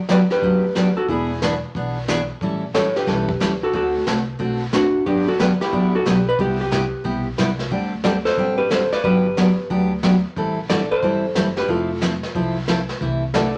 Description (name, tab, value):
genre	country, western swing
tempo	181 BPM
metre	4/4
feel	swing 64% on 8ths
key	G major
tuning	A4 = 440 Hz
part	upright bass	bass	0.0-13.5 s	E1 to D2	-32 LUFS	equal	none
part	vintage hollow-body jazz guitar	melody	0.1-13.6 s	D4 to D5	-23 LUFS	equal	none
part	picked steel-string acoustic guitar	accompaniment	0.1-13.5 s	C3 to A4	-23 LUFS	equal	none
part	vintage brush drum kit	drums	0.1-13.6 s	brushed snare drum, hi-hat, kick drum, snare drum	-30 LUFS	equal	none
room	wet studio reverb, RT60 0.7 s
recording	none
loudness	-20 LUFS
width	mono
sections	0.0-13.6 A section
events	none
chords	0.0 Gmaj7; 1.1 E7; 2.4 A7; 3.7 D7; 5.1 Gmaj7; 6.4 Cmaj7; 7.7 D7sus4; 9.0 Gmaj7; 10.4 Am7; 11.7 Fmaj7; 13.0 C6